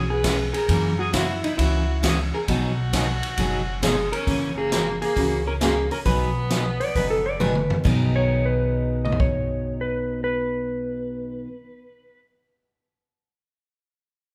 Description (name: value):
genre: country, western swing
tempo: 134 BPM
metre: 4/4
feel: swing 67% on 8ths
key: B major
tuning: A4 = 440 Hz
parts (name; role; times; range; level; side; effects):
- hollow-body jazz guitar; melody; 0.0-7.4 s; D#4 to B4; -29 LUFS; equal; none
- bright fiddle; second line; 0.0-7.4 s; G#3 to B4; -34 LUFS; equal; none
- picked steel-string acoustic guitar; accompaniment; 0.0-11.5 s; B2 to G#4; -29 LUFS; equal; none
- upright bass; bass; 0.0-11.4 s; F#1 to F#2; -29 LUFS; equal; none
- swinging big-band drum kit; drums; 0.2-9.3 s; crash cymbal, hi-hat, kick drum, ride cymbal, snare drum, toms; -29 LUFS; equal; none
- clean lap steel guitar; second line; 6.8-12.2 s; A4 to D#5; -28 LUFS; equal; none
room: moderate large studio reverb, RT60 1.4 s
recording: band playing live in one room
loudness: -23 LUFS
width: mono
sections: 0.0-4.3 A section; 4.3-7.9 B section; 7.9-11.4 C section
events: drum fill 7.4-7.9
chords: 0.0 E6; 0.7 F#7; 2.5 B6; 4.3 F#9; 6.1 B6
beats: 0.24 | 0.69 1.14 1.59 2.03 | 2.48 2.93 3.38 3.82 | 4.27 4.72 5.17 5.62 | 6.06 6.51 6.96 7.41 | 7.86 8.30 8.75 9.20 | 9.65 10.10 10.55 10.99